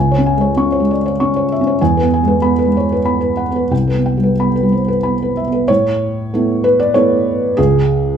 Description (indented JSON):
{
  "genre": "neoclassical minimalist piano",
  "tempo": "93 BPM",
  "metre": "3/4",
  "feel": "uneven beats, rubato",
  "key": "A major",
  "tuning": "A4 = 440 Hz",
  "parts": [
    { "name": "felt-muted upright piano", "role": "solo", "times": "0.0-8.2 s", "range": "C2 to C#6", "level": "-12 LUFS", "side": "equal", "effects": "none" }
  ],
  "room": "moderate large studio reverb, RT60 1.0 s",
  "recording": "band playing live in one room",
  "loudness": "-12 LUFS",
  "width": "side -8 dB against mid",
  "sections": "0.0-5.7 A section; 5.7-8.2 B section",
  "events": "none",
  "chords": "0.0 C#m; 1.8 Eadd9; 3.7 Cmaj7; 5.7 Aadd9; 7.6 C#5"
}